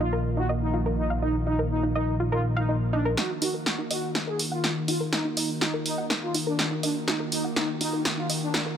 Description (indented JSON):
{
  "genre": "melodic techno",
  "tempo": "123 BPM",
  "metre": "4/4",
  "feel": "straight",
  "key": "Eb minor",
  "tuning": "A4 = 440 Hz",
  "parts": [
    { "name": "analog synth brass", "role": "melody", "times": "0.0-8.6 s", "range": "D4 to Ab4", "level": "-30 LUFS", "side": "equal", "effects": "chorus, digital delay" },
    { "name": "lush unison pad", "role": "sustained chords", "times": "0.0-8.8 s", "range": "Eb3 to Gb4", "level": "-33 LUFS", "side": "left 1 dB", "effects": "chorus" },
    { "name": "soft round pluck", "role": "arpeggios", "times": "0.0-8.7 s", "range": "Eb4 to Gb5", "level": "-32 LUFS", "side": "equal", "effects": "chorus, digital delay" },
    { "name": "fat analog bass", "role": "bass", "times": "0.0-3.1 s", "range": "Bb1", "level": "-27 LUFS", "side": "equal", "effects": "none" },
    { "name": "analog drone", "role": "drone", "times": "0.0-8.8 s", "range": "Eb3 to Bb3", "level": "-36 LUFS", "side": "right 1 dB", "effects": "chorus" },
    { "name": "punchy analog drum machine", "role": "drums", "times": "3.2-8.6 s", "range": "hi-hat, snare drum", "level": "-28 LUFS", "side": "equal", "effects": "high-pass filter on snare, high-pass filter on hats" }
  ],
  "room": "light reverb",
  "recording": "none",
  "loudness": "-24 LUFS",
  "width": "side -8 dB against mid",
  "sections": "0.0-3.2 A section; 3.2-8.8 B section",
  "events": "filter sweep on synth arpeggio sound 0.0-3.2, 3.2-8.8; build-up 3.2-8.8; drum fill 3.2-8.8; filter sweep on analog synth pad 3.2-8.8",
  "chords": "0.0 Bbsus4; 3.2 Ebm"
}